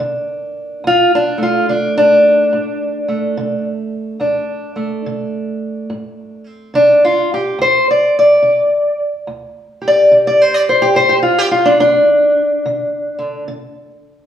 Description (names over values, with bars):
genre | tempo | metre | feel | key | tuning
acoustic country blues, solo or duo | 71 BPM | 4/4 | swing 64% on 8ths | D minor | A4 = 440 Hz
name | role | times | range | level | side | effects
fingerpicked steel-string acoustic guitar | solo | 0.0-14.3 s | D2 to D5 | -12 LUFS | equal | none
room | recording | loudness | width
wet large studio reverb, RT60 1.3 s | band playing live in one room | -11 LUFS | side -10 dB against mid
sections
0.0-14.3 A section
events
steel-string acoustic guitar solo 0.0-14.3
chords
0.0 Gm (rootless); 0.8 D5; 7.6 G5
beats
| 0.84 1.68 2.52 3.36 | 4.21 5.05 5.89 6.74 | 7.58 8.42 9.27 10.11 | 10.95 11.79 12.64 13.48